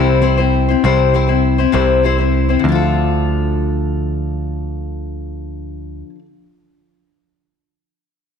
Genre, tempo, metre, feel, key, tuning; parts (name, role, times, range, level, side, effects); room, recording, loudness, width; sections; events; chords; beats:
rock; 66 BPM (dotted quarters); 6/8; straight; D minor; A4 = 440 Hz
picked steel-string acoustic guitar; accompaniment; 0.0-6.3 s; C3 to C5; -16 LUFS; left 8 dB
picked electric bass; bass; 0.0-6.0 s; C2 to D2; -17 LUFS; right 3 dB
moderate echo chamber reverb, RT60 2.2 s; -13 LUFS; side -7 dB against mid
0.0-2.6 A section; 2.6-6.3 B section
0.0 C; 2.6 Dm
| 0.84 1.74 | 2.65 3.55 | 4.46 5.37